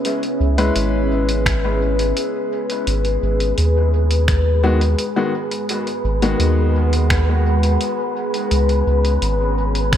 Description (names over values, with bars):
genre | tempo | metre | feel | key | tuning
ambient dub | 85 BPM | 4/4 | straight | C# minor | A4 = 439 Hz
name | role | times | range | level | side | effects
deep dark ambient pad | sustained chords | 0.0-10.0 s | G#3 to F#5 | -21 LUFS | left 1 dB | chorus, built-in reverb
lo-fi sampler-style drum kit | drums | 0.0-10.0 s | finger snaps, hi-hat | -25 LUFS | equal | none
wind-like tuned noise texture | texture | 0.0-10.0 s | B4 | -30 LUFS | left 1 dB | built-in reverb
soft dub sub bass | bass | 0.4-10.0 s | G#1 to D#2 | -17 LUFS | equal | none
warm upright piano | stabs | 0.6-8.5 s | D#3 to B4 | -24 LUFS | left 2 dB | dub echo
electronic kick drum | drums | 1.5-10.0 s | none | -20 LUFS | equal | none
room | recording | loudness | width
light reverb, digital ambience | none | -16 LUFS | side -10 dB against mid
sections
0.0-10.0 A section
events
none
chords
0.0 C#m7; 2.9 G#m7; 8.5 C#7(no3)